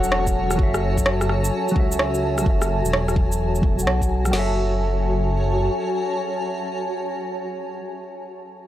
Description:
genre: future garage.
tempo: 128 BPM.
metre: 4/4.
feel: swing 65% on 16ths.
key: F# minor.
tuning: A4 = 441 Hz.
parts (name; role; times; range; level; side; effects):
mellow electric guitar; accompaniment; 0.0-7.9 s; F#3 to F#5; -26 LUFS; equal; sidechain pumping, low-pass filter, analog delay.
granular cloud pad; sustained chords; 0.0-8.1 s; F#4 to A5; -26 LUFS; equal; built-in reverb, sidechain pumping.
dark detuned saw bass; bass; 0.0-5.7 s; E1 to C#2; -23 LUFS; equal; tube saturation, sidechain pumping.
electronic shaker and rim click; drums; 0.0-4.3 s; none; -24 LUFS; equal; small room ambience.
deep house drum kit; drums; 0.3-4.5 s; crash cymbal, kick drum, snare drum; -22 LUFS; equal; small room ambience.
room: little or no reverb.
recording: dry, gritty hardware recording.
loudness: -19 LUFS.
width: side -13 dB against mid.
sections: 0.0-4.3 A section; 4.3-8.1 B section.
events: filter sweep on clean electric guitar 0.0-4.3.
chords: 0.0 F#m7.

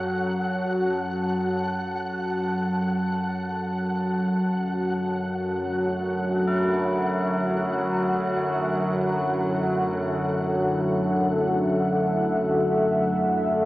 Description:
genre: ambient.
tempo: free time.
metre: none.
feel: none.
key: unclear.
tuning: A4 = 440 Hz.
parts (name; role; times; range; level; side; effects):
deep dark ambient pad; sustained chords; 0.0-13.7 s; D3 to A5; -27 LUFS; equal; chorus, built-in reverb.
tubular bells; arpeggios; 0.0-13.7 s; C#4 to E4; -34 LUFS; equal; diffuse ambient delay.
analog drone; drone; 0.0-13.7 s; F#2 to F#3; -25 LUFS; equal; chorus.
flickering grainy texture; texture; 0.0-13.7 s; F#5; -34 LUFS; equal; built-in reverb.
room: wet huge ambient reverb, RT60 8.2 s.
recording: small speaker sound.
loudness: -22 LUFS.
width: side -17 dB against mid.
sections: 0.0-13.7 A section.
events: fade-in on tubular bells 0.0-13.7; fade-out on synth texture 0.0-13.7.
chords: 0.0 F#m; 3.6 Dadd9.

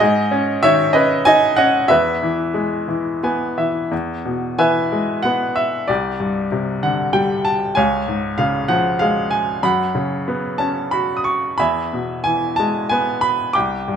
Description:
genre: classical, lyrical solo piano.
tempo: 85-98 BPM.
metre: 3/4.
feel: rubato.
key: E major.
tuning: A4 = 440 Hz.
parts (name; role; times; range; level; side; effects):
bright upright piano; solo; 0.0-14.0 s; C2 to D#6; -16 LUFS; equal; none.
room: light reverb.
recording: close, detailed microphones.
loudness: -16 LUFS.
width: side -8 dB against mid.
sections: 0.0-3.9 A section; 3.9-14.0 B section.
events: upright piano fill 2.9-3.9.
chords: 0.0 G#sus4; 1.9 E; 5.9 Csus2; 7.8 C#; 9.6 F#sus4; 11.6 E.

